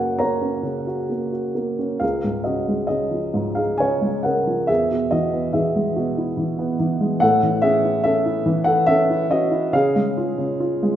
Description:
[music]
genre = classical, lyrical solo piano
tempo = 65-73 BPM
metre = 3/4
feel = rubato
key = unclear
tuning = A4 = 440 Hz
[part]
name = dark upright piano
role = solo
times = 0.0-11.0 s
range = Db2 to Bb5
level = -18 LUFS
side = equal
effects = none
[sound]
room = moderate concert hall reverb, RT60 2.4 s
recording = recorded in a church or concert hall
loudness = -18 LUFS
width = side -11 dB against mid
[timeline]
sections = 0.0-11.0 A section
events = upright piano fill 10.6-11.0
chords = 0.0 Gb; 2.0 Dbadd9; 4.7 E; 7.2 A; 9.7 Db

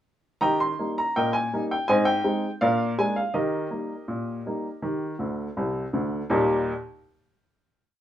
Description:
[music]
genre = ragtime piano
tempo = 82 BPM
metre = 2/4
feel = straight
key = Eb major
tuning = A4 = 439 Hz
[part]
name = warm upright piano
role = solo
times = 0.4-6.7 s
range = C2 to C6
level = -23 LUFS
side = equal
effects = none
[sound]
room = moderate studio reverb, RT60 0.7 s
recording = minimal, uncompressed stereo recording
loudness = -23 LUFS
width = side -11 dB against mid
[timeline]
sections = 0.4-6.3 A section; 6.3-7.8 final chord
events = upright piano fill 5.2-6.3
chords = 0.4 Eb; 1.9 Ab; 2.6 Bb7; 3.3 Eb

